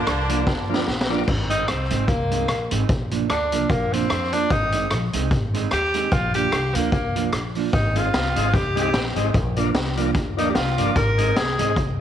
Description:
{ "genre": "ska", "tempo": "149 BPM", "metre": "4/4", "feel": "swing 57% on 8ths", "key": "Ab lydian", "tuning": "A4 = 441 Hz", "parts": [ { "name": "clear horn section", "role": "melody", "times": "0.0-1.1 s", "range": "D3 to D4", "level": "-27 LUFS", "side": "right 1 dB", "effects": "none" }, { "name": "mellow electric guitar", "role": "accompaniment", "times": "0.0-11.7 s", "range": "F3 to Eb4", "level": "-27 LUFS", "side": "right 9 dB", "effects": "slapback echo" }, { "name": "tonewheel organ", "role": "stabs", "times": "0.0-1.2, 8.0-11.7 s", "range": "D4 to Eb5", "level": "-28 LUFS", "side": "left 9 dB", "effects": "slow rotary speaker, slapback echo" }, { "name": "upright bass", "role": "bass", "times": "0.1-12.0 s", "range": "G1 to F2", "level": "-26 LUFS", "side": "left 1 dB", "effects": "none" }, { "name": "street-band drum kit", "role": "drums", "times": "0.1-11.9 s", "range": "crash cymbal, hi-hat, kick drum, rim click, snare drum", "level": "-24 LUFS", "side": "equal", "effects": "none" }, { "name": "clear tenor saxophone", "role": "melody", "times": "1.5-11.8 s", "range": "Bb3 to Bb4", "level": "-24 LUFS", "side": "left 1 dB", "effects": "none" } ], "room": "moderate echo chamber reverb, RT60 2.1 s", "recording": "1960s-style stereo with parts hard left and right", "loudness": "-19 LUFS", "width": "side -10 dB against mid", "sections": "0.0-1.3 A section; 1.3-12.0 B section", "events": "drum fill 0.5-1.3; tenor saxophone solo 1.3-12.0", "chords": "0.0 Bb; 1.3 Ab; 2.9 Bb; 4.5 Ab; 6.1 Bb; 7.7 Ab; 9.3 Bb; 11.0 Ab" }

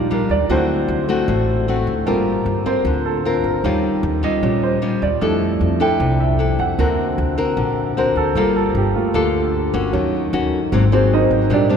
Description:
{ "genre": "bossa nova", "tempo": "153 BPM", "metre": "4/4", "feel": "straight", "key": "unclear", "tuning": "A4 = 440 Hz", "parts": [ { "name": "nylon-string guitar", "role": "accompaniment", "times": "0.0-11.8 s", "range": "G#2 to Bb4", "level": "-19 LUFS", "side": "left 3 dB", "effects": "none" }, { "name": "warm grand piano", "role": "accompaniment", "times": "0.0-11.8 s", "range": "F#3 to G5", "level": "-21 LUFS", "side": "right 4 dB", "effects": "none" }, { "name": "upright bass", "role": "bass", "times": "0.0-11.8 s", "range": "G1 to F2", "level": "-22 LUFS", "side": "equal", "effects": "none" } ], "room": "wet cathedral reverb, RT60 6.2 s", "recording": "recorded in a church or concert hall", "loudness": "-16 LUFS", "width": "side -7 dB against mid", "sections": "0.0-11.8 A section", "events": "grand piano solo 0.0-11.8", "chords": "0.5 D7; 2.1 Gm11; 3.6 Eb9; 5.2 Fmaj13; 6.8 Daug7; 8.4 Gm9; 9.9 Ebm7; 10.7 G#9" }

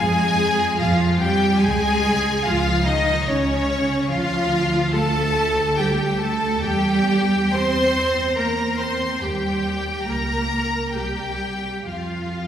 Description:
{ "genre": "classical, slow romantic movement for string orchestra", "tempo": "64-74 BPM", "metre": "3/4", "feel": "rubato", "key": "unclear", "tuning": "A4 = 440 Hz", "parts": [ { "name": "rich studio violin section", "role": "melody", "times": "0.0-12.5 s", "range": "Db5 to C6", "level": "-24 LUFS", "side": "left 3 dB", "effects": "none" }, { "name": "rich studio violin section", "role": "second line", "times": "0.0-12.5 s", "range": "Db4 to C5", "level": "-26 LUFS", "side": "left 1 dB", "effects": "none" }, { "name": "rich studio viola section", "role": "accompaniment", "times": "0.0-12.5 s", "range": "Db4 to C5", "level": "-26 LUFS", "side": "right 1 dB", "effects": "none" }, { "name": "rich studio cello section", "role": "bass", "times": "0.0-12.5 s", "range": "Db3 to C4", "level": "-24 LUFS", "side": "right 2 dB", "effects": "none" }, { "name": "warm studio double bass section", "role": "bass", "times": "0.0-12.5 s", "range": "C2 to F2", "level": "-26 LUFS", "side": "right 1 dB", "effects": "none" } ], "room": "wet concert hall reverb, RT60 2.1 s", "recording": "recorded in a church or concert hall", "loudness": "-18 LUFS", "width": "side -9 dB against mid", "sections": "0.0-12.5 A section", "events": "none", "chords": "0.0 Fm; 1.6 Db; 4.1 G5/D; 6.6 C/E; 9.2 Eb; 10.1 Bbm/Db; 11.0 C5; 11.9 N.C." }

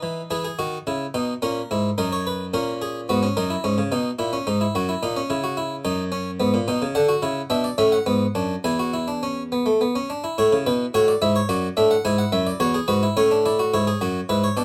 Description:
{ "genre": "classical, baroque-style 3-part fugue for harpsichord", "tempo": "108 BPM", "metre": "3/4", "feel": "straight", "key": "E major", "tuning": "A4 = 438 Hz", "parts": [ { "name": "harpsichord", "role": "solo", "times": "0.0-14.6 s", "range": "E2 to G#5", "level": "-22 LUFS", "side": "equal", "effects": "none" } ], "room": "light reverb", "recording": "close, detailed microphones", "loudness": "-22 LUFS", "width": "mono", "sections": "0.3-10.4 A section; 10.4-13.7 B section", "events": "none", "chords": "0.3 E; 1.4 A#m7b5; 2.0 D#m/F#; 3.1 G#m7; 3.6 C#m/G#; 4.8 F#; 5.3 F#5/C#; 6.4 G#m; 7.0 Bm; 8.7 E; 10.4 A; 11.5 D/F#; 12.1 E7; 13.2 A; 13.7 E7" }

